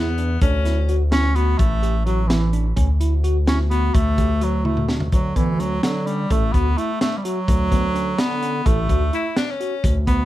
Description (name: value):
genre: progressive instrumental, band music in an uneven meter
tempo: 255 BPM (eighths)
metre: 5/8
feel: straight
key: D major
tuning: A4 = 440 Hz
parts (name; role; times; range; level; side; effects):
- bright alto saxophone; second line; 0.0-1.0, 9.1-10.0 s; B3 to E4; -26 LUFS; left 5 dB; none
- tine electric piano; arpeggios; 0.0-10.2 s; B3 to A4; -29 LUFS; right 2 dB; none
- smooth synth bass; bass; 0.0-10.3 s; A1 to D3; -20 LUFS; equal; none
- crunchy breakbeat drum kit; drums; 0.2-10.2 s; hi-hat, kick drum, snare drum, toms; -21 LUFS; equal; none
- bright bass clarinet; melody; 1.1-10.3 s; E3 to C#4; -23 LUFS; equal; tape echo
room: little or no reverb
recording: none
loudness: -17 LUFS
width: side -14 dB against mid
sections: 0.0-5.1 A section; 5.1-10.3 B section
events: bass clarinet solo 0.0-5.1; drum fill 4.7-5.1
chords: 0.4 Dmaj7; 2.8 D69; 4.0 D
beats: 0.19 | 0.42 0.66 0.89 1.13 1.36 | 1.60 1.83 2.07 2.30 2.54 | 2.77 3.01 3.24 3.48 3.71 | 3.95 4.19 4.42 4.66 4.89 | 5.13 5.36 5.60 5.83 6.07 | 6.30 6.54 6.78 7.01 7.25 | 7.48 7.72 7.95 8.19 8.42 | 8.66 8.89 9.13 9.37 9.60 | 9.84 10.07